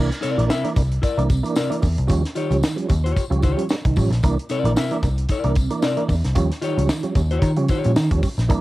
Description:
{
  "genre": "funk",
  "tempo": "112 BPM",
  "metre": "4/4",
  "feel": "swing 56% on 16ths",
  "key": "unclear",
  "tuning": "A4 = 440 Hz",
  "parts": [
    { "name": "percussive tonewheel organ", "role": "stabs", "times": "0.0-8.6 s", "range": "C3 to D4", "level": "-24 LUFS", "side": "right 3 dB", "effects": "chorus vibrato, fast rotary speaker" },
    { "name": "vintage muted picked electric bass", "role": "bass", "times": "0.0-8.6 s", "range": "A1 to Eb3", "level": "-20 LUFS", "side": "equal", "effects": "none" },
    { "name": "tight funk drum kit", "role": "drums", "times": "0.1-8.6 s", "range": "hi-hat, kick drum, snare drum", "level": "-22 LUFS", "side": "equal", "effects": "none" },
    { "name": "tambourine", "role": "percussion", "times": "0.1-8.6 s", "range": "none", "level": "-41 LUFS", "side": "left 6 dB", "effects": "none" },
    { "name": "mellow electric guitar", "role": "accompaniment", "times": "0.2-7.9 s", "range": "E4 to E5", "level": "-26 LUFS", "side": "left 5 dB", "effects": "none" }
  ],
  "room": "studio reverb",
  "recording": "home recording on cassette, vinyl crackle",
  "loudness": "-18 LUFS",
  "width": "side -17 dB against mid",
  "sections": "0.0-8.6 A section",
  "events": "none",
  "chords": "0.0 C9; 2.1 Eb9; 4.2 C9; 6.4 Eb9"
}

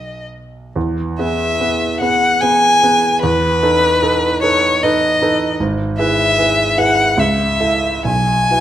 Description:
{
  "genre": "classical, romantic duo for violin and grand piano",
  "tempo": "74 BPM",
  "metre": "3/4",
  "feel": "uneven beats, rubato",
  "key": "E major",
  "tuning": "A4 = 439 Hz",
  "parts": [
    { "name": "rich violin", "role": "melody", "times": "0.0-8.6 s", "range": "B4 to G#5", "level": "-14 LUFS", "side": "left 2 dB", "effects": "none" },
    { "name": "dark grand piano", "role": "accompaniment", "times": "0.0-8.6 s", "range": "G#1 to E5", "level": "-17 LUFS", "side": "right 2 dB", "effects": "none" }
  ],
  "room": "moderate recital hall reverb, RT60 1.3 s",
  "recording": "none",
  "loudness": "-13 LUFS",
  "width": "side -11 dB against mid",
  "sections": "0.8-8.6 A section",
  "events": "none",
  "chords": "0.0 B; 0.8 E; 3.2 B7/E; 5.6 E/G#; 7.2 A/C#; 8.0 Bsus4"
}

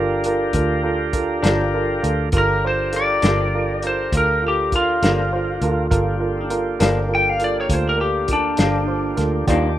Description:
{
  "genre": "slow blues",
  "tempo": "67 BPM (dotted quarters)",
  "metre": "12/8",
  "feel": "straight",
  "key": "G minor",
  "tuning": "A4 = 439 Hz",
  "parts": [
    { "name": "warm baby grand piano", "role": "accompaniment", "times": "0.0-9.7 s", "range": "F4 to D5", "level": "-24 LUFS", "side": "right 4 dB", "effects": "none" },
    { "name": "tonewheel organ", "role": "sustained chords", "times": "0.0-9.8 s", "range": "Eb3 to D5", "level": "-25 LUFS", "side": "equal", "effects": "slow rotary speaker" },
    { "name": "vintage muted fingered electric bass", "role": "bass", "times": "0.0-9.8 s", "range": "G1 to Eb2", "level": "-24 LUFS", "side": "equal", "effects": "none" },
    { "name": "warm soul drum kit", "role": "drums", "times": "0.2-9.6 s", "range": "hi-hat, kick drum, snare drum", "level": "-22 LUFS", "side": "equal", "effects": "none" },
    { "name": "electric guitar through a small old amp", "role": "accompaniment", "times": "1.4-9.7 s", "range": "G2 to D4", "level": "-24 LUFS", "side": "left 5 dB", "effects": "tremolo" },
    { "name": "lightly driven lead guitar", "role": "melody", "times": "2.4-9.8 s", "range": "D4 to G5", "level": "-20 LUFS", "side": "left 1 dB", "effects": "none" }
  ],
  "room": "small room ambience",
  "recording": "rough home demo mix",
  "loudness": "-17 LUFS",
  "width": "side -12 dB against mid",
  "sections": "0.0-9.8 A section",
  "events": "none",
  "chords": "0.0 Gm7"
}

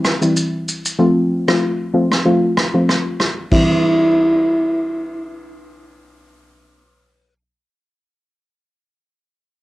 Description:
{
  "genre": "afrobeats",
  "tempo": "95 BPM",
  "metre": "4/4",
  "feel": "swing 55% on 16ths",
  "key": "C major",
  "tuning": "A4 = 440 Hz",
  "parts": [
    { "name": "vintage brush drum kit", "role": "drums", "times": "0.0-3.7 s", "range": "kick drum, ride cymbal, rim click, shaker", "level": "-20 LUFS", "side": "equal", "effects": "vintage 12-bit sampler grit" },
    { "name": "soft round pluck", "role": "accompaniment", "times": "0.2-7.5 s", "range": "E3 to F4", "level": "-16 LUFS", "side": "left 1 dB", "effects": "chorus, low-pass filter" },
    { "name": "raspy alto saxophone", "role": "melody", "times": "3.5-5.4 s", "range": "E4", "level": "-16 LUFS", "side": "right 1 dB", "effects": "low-pass filter, cassette tape, analog delay" }
  ],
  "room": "light reverb",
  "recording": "home recording on cassette, lossy compression artefacts, faint mains hum",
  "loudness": "-14 LUFS",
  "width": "side -17 dB against mid",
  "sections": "0.0-3.5 A section; 3.5-6.0 B section",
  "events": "filter sweep 0.0-3.5",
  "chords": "0.0 C; 1.0 F; 3.5 C"
}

